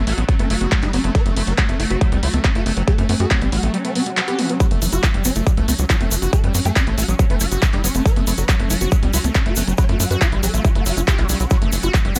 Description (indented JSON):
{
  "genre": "psychedelic trance",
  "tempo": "139 BPM",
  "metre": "4/4",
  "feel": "straight",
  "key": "F# phrygian",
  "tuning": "A4 = 439 Hz",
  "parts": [
    { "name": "pulsing gated texture", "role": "sustained chords", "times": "0.0-12.2 s", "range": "F#3 to C#4", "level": "-31 LUFS", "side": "equal", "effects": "chorus, built-in reverb, sidechain pumping" },
    { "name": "screaming distorted acid line", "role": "riff", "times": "0.0-12.2 s", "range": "E3 to G4", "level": "-29 LUFS", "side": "equal", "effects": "distortion, chorus, sidechain pumping, delay" },
    { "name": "tight sequencer bass", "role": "bass", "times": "0.0-12.2 s", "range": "F#1 to F#2", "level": "-23 LUFS", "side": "equal", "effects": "tube saturation" },
    { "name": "swarming rave lead", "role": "melody", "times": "0.1-12.2 s", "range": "F#3 to C#5", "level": "-29 LUFS", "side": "equal", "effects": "chorus, phaser, sidechain pumping, delay" },
    { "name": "big-room dance drum kit", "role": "drums", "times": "0.1-12.2 s", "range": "handclaps, hi-hat", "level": "-27 LUFS", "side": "equal", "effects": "none" },
    { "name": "electronic kick drum", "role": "drums", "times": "0.3-12.0 s", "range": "none", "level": "-20 LUFS", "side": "equal", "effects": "none" },
    { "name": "swell", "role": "sound effects", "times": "3.9-4.6 s", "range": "none", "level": "-34 LUFS", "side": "equal", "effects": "none" },
    { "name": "egg shaker", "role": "percussion", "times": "4.6-12.2 s", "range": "none", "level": "-29 LUFS", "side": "equal", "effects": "none" }
  ],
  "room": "digital ambience",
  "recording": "none",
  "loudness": "-18 LUFS",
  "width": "mono",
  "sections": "0.0-12.2 A section",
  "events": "swell 3.9-4.6",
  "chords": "0.0 F#5"
}